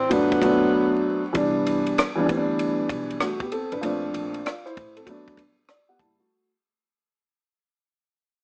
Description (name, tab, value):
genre	hip hop, jazz-hop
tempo	97 BPM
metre	4/4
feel	swing 65% on 16ths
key	C lydian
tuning	A4 = 441 Hz
part	growling tenor saxophone	melody	0.0-1.0 s	B3 to C4	-29 LUFS	equal	analog delay
part	upright bass	bass	0.0-6.2 s	F#1 to D2	-36 LUFS	equal	none
part	dark concert grand piano	accompaniment	0.1-6.5 s	E3 to A5	-25 LUFS	equal	none
part	compact cocktail drum kit	drums	0.1-6.2 s	hi-hat, kick drum, ride cymbal, rim click	-33 LUFS	equal	none
room	wet studio reverb, RT60 0.7 s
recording	vinyl crackle, small speaker sound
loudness	-24 LUFS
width	mono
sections	0.0-1.4 A section; 1.4-6.3 B section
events	break 0.7-1.4; fade-out 1.4-6.3; grand piano fill 5.4-6.3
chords	0.1 Gmaj9; 1.4 Cmaj9; 3.8 Bbmaj9; 5.1 Gmaj9